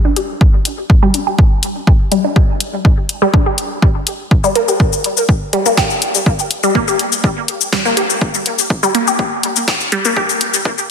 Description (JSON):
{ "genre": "minimal techno", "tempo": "123 BPM", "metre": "4/4", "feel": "straight", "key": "G minor", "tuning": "A4 = 440 Hz", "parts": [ { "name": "resonant blip pluck", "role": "riff", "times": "0.0-10.2 s", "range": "G3 to G4", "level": "-16 LUFS", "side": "equal", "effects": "phaser, cassette tape, sidechain pumping, dub echo" }, { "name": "punchy analog drum machine", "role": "drums", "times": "0.2-10.9 s", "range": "hi-hat, shaker, snare drum", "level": "-18 LUFS", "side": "left 5 dB", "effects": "high-pass filter on perc, high-pass filter on hats, high-pass filter on snare" }, { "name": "electronic kick drum", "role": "drums", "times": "0.4-10.8 s", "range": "none", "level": "-12 LUFS", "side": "equal", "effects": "none" } ], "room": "moderate lush hall reverb, RT60 2.3 s", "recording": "dense, heavily limited modern master, high-pass filter", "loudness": "-12 LUFS", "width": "side -7 dB against mid", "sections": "0.0-10.9 A section", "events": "build-up 0.0-10.9; filter sweep on synth pluck 0.0-10.9; filter sweep 0.0-10.9", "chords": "none" }